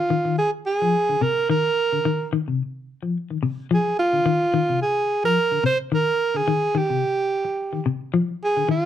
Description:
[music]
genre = afrobeat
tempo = 108 BPM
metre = 4/4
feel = swing 54% on 16ths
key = unclear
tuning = A4 = 440 Hz
[part]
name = breathy alto saxophone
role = melody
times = 0.0-8.9 s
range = F4 to C5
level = -20 LUFS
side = right 2 dB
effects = none
[part]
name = semi-hollow electric guitar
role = arpeggios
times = 0.1-8.8 s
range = C3 to F3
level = -24 LUFS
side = left 5 dB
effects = tremolo
[sound]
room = moderate club reverb, RT60 0.8 s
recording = none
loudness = -20 LUFS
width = side -10 dB against mid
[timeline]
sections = 0.0-8.9 A section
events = none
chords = 0.0 Cm

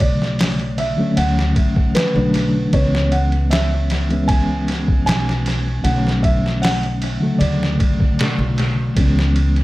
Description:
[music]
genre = trip hop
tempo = 77 BPM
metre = 4/4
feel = straight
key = unclear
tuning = A4 = 440 Hz
[part]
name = felt-muted upright piano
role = melody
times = 0.0-8.5 s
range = B4 to G#5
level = -25 LUFS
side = right 1 dB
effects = tape echo
[part]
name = mellow reed electric piano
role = accompaniment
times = 0.0-9.6 s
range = C#3 to D4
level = -20 LUFS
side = left 1 dB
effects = tremolo, vintage 12-bit sampler grit, low-pass filter, tape echo
[part]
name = upright bass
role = bass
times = 0.0-9.6 s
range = B1 to D2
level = -20 LUFS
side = equal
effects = none
[part]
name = trip hop sampler-style drum kit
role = drums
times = 0.0-9.6 s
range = hi-hat, kick drum, ride cymbal, snare drum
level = -20 LUFS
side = equal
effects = overdrive, tape echo
[sound]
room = light reverb, digital ambience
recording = echo-heavy mix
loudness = -15 LUFS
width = side -18 dB against mid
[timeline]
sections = 0.0-9.6 A section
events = filter sweep on reed electric piano 0.0-9.6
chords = 0.0 Bm7; 2.7 C#m7; 5.8 Bm7; 9.0 C#m7

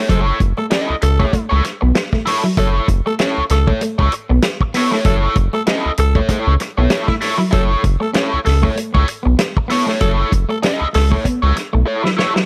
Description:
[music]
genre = funk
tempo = 97 BPM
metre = 4/4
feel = swing 56% on 16ths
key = F# dorian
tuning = A4 = 440 Hz
[part]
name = crunchy overdriven guitar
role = accompaniment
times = 0.0-12.4 s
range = E4 to D#5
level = -22 LUFS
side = equal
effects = wah
[part]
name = electric guitar at the edge of break-up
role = riff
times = 0.0-12.5 s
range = F#3 to C#4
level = -24 LUFS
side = equal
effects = none
[part]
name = growling tenor saxophone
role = second line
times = 0.1-11.1 s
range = A4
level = -25 LUFS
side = equal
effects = none
[part]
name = round analog bass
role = bass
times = 0.1-11.8 s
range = F#1 to C#2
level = -17 LUFS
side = equal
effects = none
[part]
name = warm soul drum kit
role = drums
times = 0.1-12.5 s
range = hi-hat, kick drum, snare drum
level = -21 LUFS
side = equal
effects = none
[sound]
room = little or no reverb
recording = none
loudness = -16 LUFS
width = mono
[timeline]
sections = 0.0-12.5 A section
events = drum fill 11.9-12.5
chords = 0.0 F#m7

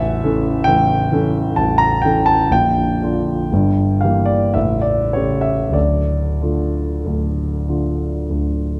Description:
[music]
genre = classical, romantic nocturne for solo piano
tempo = 46-69 BPM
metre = 3/4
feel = rubato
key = D minor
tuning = A4 = 438 Hz
[part]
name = warm grand piano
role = solo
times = 0.0-8.8 s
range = A0 to Bb5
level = -17 LUFS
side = equal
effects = none
[sound]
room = moderate recital hall reverb, RT60 1.8 s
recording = close, detailed microphones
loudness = -17 LUFS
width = mono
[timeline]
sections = 0.0-8.8 A section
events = none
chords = 0.0 A; 2.5 Bb; 3.5 Edim/G; 4.6 A7; 5.8 Dm

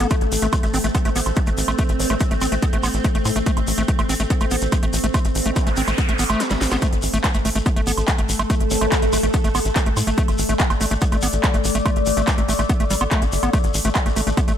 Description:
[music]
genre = psychedelic trance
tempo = 143 BPM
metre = 4/4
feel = straight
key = unclear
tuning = A4 = 438 Hz
[part]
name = evolving wavetable pad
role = sustained chords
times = 0.0-14.6 s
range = A3 to D5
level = -25 LUFS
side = left 2 dB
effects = chorus, built-in reverb, sidechain pumping
[part]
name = overdriven acid bass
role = riff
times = 0.0-14.5 s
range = G3 to C4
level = -26 LUFS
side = equal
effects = auto-pan, cassette tape, sidechain pumping, digital delay
[part]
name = tight sequencer bass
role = bass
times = 0.0-14.5 s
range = G1 to A2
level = -23 LUFS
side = equal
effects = none
[part]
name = techno drum kit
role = drums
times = 0.0-14.6 s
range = handclaps, hi-hat, snare drum, woodblock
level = -26 LUFS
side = right 2 dB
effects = overdrive
[part]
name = shekere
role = percussion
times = 0.0-14.6 s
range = none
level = -31 LUFS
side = left 3 dB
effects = none
[part]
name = electronic kick drum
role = drums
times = 0.1-14.5 s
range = none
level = -20 LUFS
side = equal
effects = overdrive
[part]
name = formant-sweep wobble bass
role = second line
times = 2.0-2.2, 8.7-9.3 s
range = A3 to C4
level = -34 LUFS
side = right 4 dB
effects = none
[part]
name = noise sweep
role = sound effects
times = 5.4-6.8 s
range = none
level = -29 LUFS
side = right 3 dB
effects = none
[sound]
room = little or no reverb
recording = none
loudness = -17 LUFS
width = side -9 dB against mid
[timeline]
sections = 0.0-14.6 A section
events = noise sweep 5.4-6.8; kick drops out 6.4-6.8; drum fill 6.4-6.8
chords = 0.0 Gsus4 (rootless)

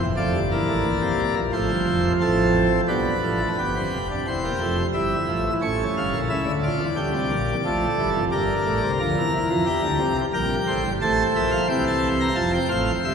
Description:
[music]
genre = classical, baroque-style 4-part fugue for pipe organ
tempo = 89 BPM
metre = 4/4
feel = straight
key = unclear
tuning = A4 = 440 Hz
[part]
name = pipe organ, plenum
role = solo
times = 0.0-13.1 s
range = E1 to Bb5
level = -20 LUFS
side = equal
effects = none
[sound]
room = wet cathedral reverb, RT60 4.5 s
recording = recorded in a church or concert hall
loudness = -20 LUFS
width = side -6 dB against mid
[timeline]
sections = 0.0-2.9 A section; 2.9-13.1 B section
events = none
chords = 0.2 F; 2.9 G7; 4.3 C/E; 5.6 A7; 7.0 Dm; 8.3 Gm; 9.7 Edim; 11.0 Am; 12.4 F

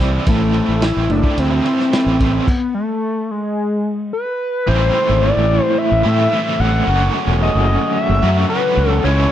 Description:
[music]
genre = psychedelic rock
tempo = 110 BPM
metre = 4/4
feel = straight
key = A minor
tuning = A4 = 442 Hz
[part]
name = tonewheel organ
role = sustained chords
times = 0.0-2.5 s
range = E4 to E5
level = -29 LUFS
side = right 2 dB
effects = slow rotary speaker, overdrive, chorus vibrato
[part]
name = biting overdriven guitar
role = riff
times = 0.0-9.3 s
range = F#2 to F#4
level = -19 LUFS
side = right 2 dB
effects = tremolo
[part]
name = fuzz fingered electric bass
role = bass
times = 0.0-9.3 s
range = E1 to A2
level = -17 LUFS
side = equal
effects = overdrive
[part]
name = vintage drum kit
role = drums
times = 0.0-2.6 s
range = crash cymbal, kick drum, ride cymbal, snare drum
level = -20 LUFS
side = equal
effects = none
[part]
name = pulse-width lead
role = melody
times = 0.3-9.3 s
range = G#3 to F#5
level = -18 LUFS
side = left 2 dB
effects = chorus, slapback echo
[sound]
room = little or no reverb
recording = dry, close 1970s-style studio recording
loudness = -14 LUFS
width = side -11 dB against mid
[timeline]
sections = 0.0-4.7 A section; 4.7-9.3 B section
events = stop 2.5-4.7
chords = 0.3 Am; 2.5 N.C.; 4.7 Am; 6.9 F#m7

